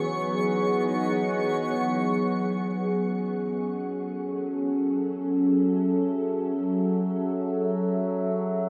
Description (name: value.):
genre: ambient.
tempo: free time.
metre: none.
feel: none.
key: F# dorian.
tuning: A4 = 440 Hz.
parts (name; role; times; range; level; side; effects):
evolving wavetable pad; sustained chords; 0.0-8.7 s; E3 to F#5; -28 LUFS; equal; chorus, built-in reverb.
analog drone; drone; 0.0-8.7 s; F#3; -33 LUFS; equal; chorus.
twinkling granular texture; texture; 0.0-1.8 s; C#5 to C#6; -36 LUFS; equal; built-in reverb.
room: wet huge ambient reverb, RT60 8.4 s.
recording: none.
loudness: -26 LUFS.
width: mono.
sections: 0.0-1.8 A section; 1.8-8.7 B section.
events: filter sweep on ambient pad 1.8-8.7.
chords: 0.0 Emaj7; 1.8 F#m7.